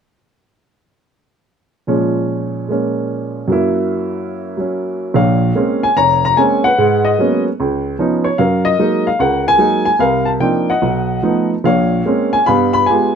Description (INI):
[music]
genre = solo jazz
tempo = 147 BPM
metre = 4/4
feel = swing 67% on 8ths, rubato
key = Bb minor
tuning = A4 = 442 Hz
[part]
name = warm upright piano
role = solo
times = 1.9-13.2 s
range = F1 to B5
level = -13 LUFS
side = equal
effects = none
[sound]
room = little or no reverb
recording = close, detailed microphones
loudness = -13 LUFS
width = side -7 dB against mid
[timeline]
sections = 1.9-5.1 A section; 5.1-13.2 B section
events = none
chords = 1.9 Bbm7; 3.5 Gb7; 5.1 Bbm9; 6.8 Abm11; 7.6 Db9; 8.4 Gb69; 10.0 Cm11; 10.8 B7#11; 11.7 Bbm9; 12.5 G7b9